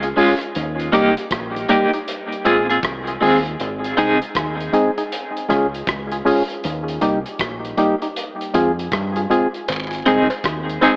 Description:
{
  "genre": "dub reggae",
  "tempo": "79 BPM",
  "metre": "4/4",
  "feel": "swing 64% on 16ths",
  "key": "Ab major",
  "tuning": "A4 = 439 Hz",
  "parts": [
    { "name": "electric guitar at the edge of break-up", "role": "accompaniment", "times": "0.0-4.2, 10.1-11.0 s", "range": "Ab3 to Ab4", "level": "-19 LUFS", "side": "equal", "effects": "tremolo, dub echo" },
    { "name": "percussive organ stab", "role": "stabs", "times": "0.0-11.0 s", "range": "G3 to Ab4", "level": "-19 LUFS", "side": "equal", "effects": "chorus, dub echo" },
    { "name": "deep dub fingered electric bass", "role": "bass", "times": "0.0-10.8 s", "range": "Ab1 to G2", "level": "-27 LUFS", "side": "equal", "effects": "none" },
    { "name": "crunchy breakbeat drum kit", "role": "drums", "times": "0.0-11.0 s", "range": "hi-hat, kick drum, rim click", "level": "-27 LUFS", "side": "equal", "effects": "dub echo" },
    { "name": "cowbell and jawbone-type rattle", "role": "percussion", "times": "9.7-11.0 s", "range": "none", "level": "-27 LUFS", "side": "equal", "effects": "dub echo" }
  ],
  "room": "moderate echo chamber reverb, RT60 2.7 s",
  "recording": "echo-heavy mix, AM radio sound",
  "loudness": "-17 LUFS",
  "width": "side -33 dB against mid",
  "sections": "0.0-11.0 A section",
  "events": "break 0.0-9.7",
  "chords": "0.0 Db; 0.5 Eb; 2.1 Fm; 3.6 Ab; 5.1 Db; 6.6 Eb; 8.2 Fm; 9.7 Ab"
}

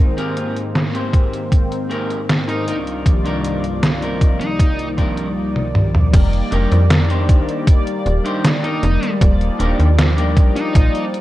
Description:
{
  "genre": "vaporwave",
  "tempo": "78 BPM",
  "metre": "4/4",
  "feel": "straight",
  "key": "unclear",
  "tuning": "A4 = 440 Hz",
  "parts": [
    { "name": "mellow synth brass", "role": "accompaniment", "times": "0.0-11.2 s", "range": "C2 to D5", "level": "-22 LUFS", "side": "equal", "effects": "wide subtle chorus, tape echo" },
    { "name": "lush unison pad", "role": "sustained chords", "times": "0.0-5.3 s", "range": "C2 to D5", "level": "-28 LUFS", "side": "equal", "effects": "chorus" },
    { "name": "clean electric guitar", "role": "riff", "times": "0.0-10.8 s", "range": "C4 to C5", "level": "-26 LUFS", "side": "left 2 dB", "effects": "wide subtle chorus, tape echo" },
    { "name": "detuned 8-bit digital drum machine", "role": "drums", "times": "0.2-11.2 s", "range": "crash cymbal, hi-hat, snare drum, toms", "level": "-19 LUFS", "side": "equal", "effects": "overdrive, gated reverb" },
    { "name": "electronic kick drum", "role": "drums", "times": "1.1-10.9 s", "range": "none", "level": "-13 LUFS", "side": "equal", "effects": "overdrive" },
    { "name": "high-gain lead guitar", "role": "melody", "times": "2.5-11.0 s", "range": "Eb4", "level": "-27 LUFS", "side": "left 1 dB", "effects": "distortion, tape echo" },
    { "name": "slap-like FM bass", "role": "bass", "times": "6.1-10.9 s", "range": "Eb1 to F2", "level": "-15 LUFS", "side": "equal", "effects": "none" }
  ],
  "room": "little or no reverb",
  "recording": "cassette tape",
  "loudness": "-14 LUFS",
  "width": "side -16 dB against mid",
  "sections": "0.0-6.1 A section; 6.1-11.2 B section",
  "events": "drum fill 5.6-6.1",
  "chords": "0.0 Abmaj9; 2.7 Cm11; 6.1 F13sus4"
}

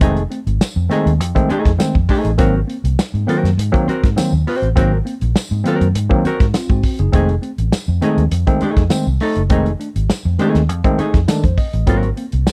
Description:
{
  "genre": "funk",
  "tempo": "101 BPM",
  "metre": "4/4",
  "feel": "straight",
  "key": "unclear",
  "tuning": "A4 = 439 Hz",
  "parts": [
    { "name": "hollow-body jazz guitar", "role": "accompaniment", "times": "0.0-12.1 s", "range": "A3 to C5", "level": "-22 LUFS", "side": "equal", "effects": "none" },
    { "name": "mellow tine electric piano", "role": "stabs", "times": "0.0-12.4 s", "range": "Eb3 to Eb5", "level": "-22 LUFS", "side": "equal", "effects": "none" },
    { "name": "vintage muted fingered electric bass", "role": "bass", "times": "0.0-12.5 s", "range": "F1 to Ab2", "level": "-19 LUFS", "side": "equal", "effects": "none" },
    { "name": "warm soul drum kit", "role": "drums", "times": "0.0-12.5 s", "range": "hi-hat, kick drum, snare drum", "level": "-19 LUFS", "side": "equal", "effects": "none" },
    { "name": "tambourine", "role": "percussion", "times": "0.6-12.5 s", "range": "none", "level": "-34 LUFS", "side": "equal", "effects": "none" }
  ],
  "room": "studio reverb",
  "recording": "dry, close 1970s-style studio recording",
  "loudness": "-16 LUFS",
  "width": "mono",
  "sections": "0.0-12.5 A section",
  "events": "tine electric piano fill 11.0-11.9",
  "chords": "0.0 F7#9; 2.4 Ab9; 7.1 F7#9; 11.9 Ab9"
}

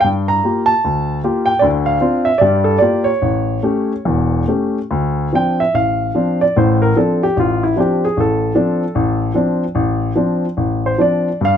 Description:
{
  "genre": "solo jazz",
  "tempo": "137-154 BPM",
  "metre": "4/4",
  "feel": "swing 65% on 8ths, rubato",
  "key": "D minor",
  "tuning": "A4 = 439 Hz",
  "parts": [
    { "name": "warm baby grand piano", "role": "solo", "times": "0.0-11.6 s", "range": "E1 to Bb5", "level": "-14 LUFS", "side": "equal", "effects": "none" }
  ],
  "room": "light reverb",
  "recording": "close, detailed microphones",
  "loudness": "-14 LUFS",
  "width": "side -8 dB against mid",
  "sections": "0.0-4.9 A section; 4.9-11.6 B section",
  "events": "grand piano solo 4.9-11.6",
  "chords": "0.0 Gm7; 1.6 Dm7; 2.4 Gm7; 3.2 A7; 4.9 Dm7"
}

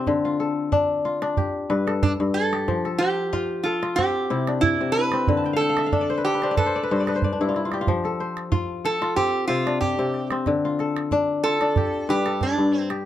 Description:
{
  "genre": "west african traditional, West African string and xylophone music",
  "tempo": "92 BPM",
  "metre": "4/4",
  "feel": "straight",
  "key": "F lydian",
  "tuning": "A4 = 440 Hz",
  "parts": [
    { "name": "kora", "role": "arpeggios", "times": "0.0-13.1 s", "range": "G2 to A5", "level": "-23 LUFS", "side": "left 3 dB", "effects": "none" },
    { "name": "calabash", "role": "percussion", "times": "0.1-13.0 s", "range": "none", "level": "-27 LUFS", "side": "right 4 dB", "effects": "none" },
    { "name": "metal-body resonator slide guitar", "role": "melody", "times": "2.0-12.9 s", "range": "D4 to B4", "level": "-23 LUFS", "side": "right 2 dB", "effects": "plate reverb" }
  ],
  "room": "light reverb",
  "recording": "dark, warm production",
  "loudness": "-20 LUFS",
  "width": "side -12 dB against mid",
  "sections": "0.0-13.1 A section",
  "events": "kora fill 5.4-7.9",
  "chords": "0.1 Dm; 1.4 G; 2.7 F; 4.0 C; 5.3 D5; 6.6 N.C.; 7.9 F; 9.2 C; 10.5 Dm; 11.8 G"
}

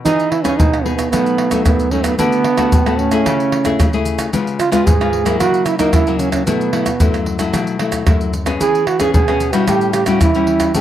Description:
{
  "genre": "samba and choro",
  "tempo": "112 BPM",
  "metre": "4/4",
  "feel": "straight",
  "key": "E major",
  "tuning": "A4 = 440 Hz",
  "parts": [
    { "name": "nylon-string guitar", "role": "accompaniment", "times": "0.0-10.8 s", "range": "F#2 to G#4", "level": "-18 LUFS", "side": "left 5 dB", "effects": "none" },
    { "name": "warm trombone", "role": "second line", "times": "0.1-10.8 s", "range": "B3 to G#4", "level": "-17 LUFS", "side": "right 6 dB", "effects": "none" },
    { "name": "maracas, surdo, pandeiro and tamborim", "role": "percussion", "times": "0.1-10.8 s", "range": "none", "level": "-17 LUFS", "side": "right 1 dB", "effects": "none" }
  ],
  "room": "light reverb",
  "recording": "dry, close 1970s-style studio recording",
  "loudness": "-13 LUFS",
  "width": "side -11 dB against mid",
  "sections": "0.1-10.8 A section",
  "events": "trombone solo 0.1-10.8",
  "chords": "0.1 Emaj7; 1.1 B7; 2.2 D6; 3.3 Amaj7/C#; 4.3 C#7; 5.4 F#7/C#; 6.5 B7sus4; 8.6 E6; 9.7 A7"
}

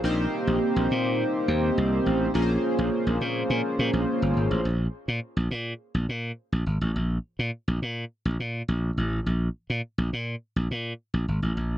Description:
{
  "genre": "early-eighties boogie funk",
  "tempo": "104 BPM",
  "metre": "4/4",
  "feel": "straight",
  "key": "Bb dorian",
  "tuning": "A4 = 440 Hz",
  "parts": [
    { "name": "chorused polysynth", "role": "accompaniment", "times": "0.0-4.7 s", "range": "Bb3 to C5", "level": "-25 LUFS", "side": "equal", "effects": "none" },
    { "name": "slap bass", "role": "bass", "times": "0.0-11.8 s", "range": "G1 to Bb2", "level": "-25 LUFS", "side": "equal", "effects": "none" }
  ],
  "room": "digital ambience",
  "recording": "nothing above 10.8 kHz",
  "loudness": "-24 LUFS",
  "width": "side -12 dB against mid",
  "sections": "0.0-4.7 A section; 4.7-11.8 B section",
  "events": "none",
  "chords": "0.0 Cm7/Bb; 2.3 Bbm9; 4.7 N.C."
}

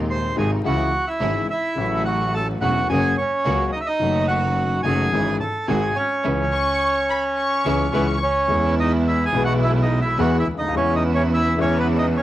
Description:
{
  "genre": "tango",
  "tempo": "107 BPM",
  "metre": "4/4",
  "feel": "rubato",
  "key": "C# minor, E major from 8.5 s",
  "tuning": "A4 = 440 Hz",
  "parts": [
    { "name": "warm concert grand piano", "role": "accompaniment", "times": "0.0-12.2 s", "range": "D#1 to G#4", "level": "-25 LUFS", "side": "left 5 dB", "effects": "none" },
    { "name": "bright studio string section", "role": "stabs", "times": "0.0-12.2 s", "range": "G#3 to F#4", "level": "-29 LUFS", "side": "right 5 dB", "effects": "analog delay" },
    { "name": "clear double bass", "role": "bass", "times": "0.0-12.2 s", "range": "E1 to E2", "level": "-23 LUFS", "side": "right 1 dB", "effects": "transformer saturation" },
    { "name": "bandoneon", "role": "melody", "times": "0.1-12.2 s", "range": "B3 to B#5", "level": "-22 LUFS", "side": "right 2 dB", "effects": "cassette tape" },
    { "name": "warm studio violin section", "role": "second line", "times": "6.5-8.5 s", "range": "B5 to C#6", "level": "-26 LUFS", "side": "left 4 dB", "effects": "none" }
  ],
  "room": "moderate studio reverb, RT60 0.7 s",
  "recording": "home recording on cassette, vinyl crackle",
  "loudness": "-18 LUFS",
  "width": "side -14 dB against mid",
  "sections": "0.0-8.5 A section; 8.5-12.2 B section",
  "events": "band accent 6.2-8.5",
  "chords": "0.0 G#; 0.7 C#m; 1.8 A6; 2.9 F#; 4.0 D#dim/F#; 5.1 C#m/G#; 5.7 G#7; 6.2 C#m7; 8.5 E; 10.8 C#m7/E"
}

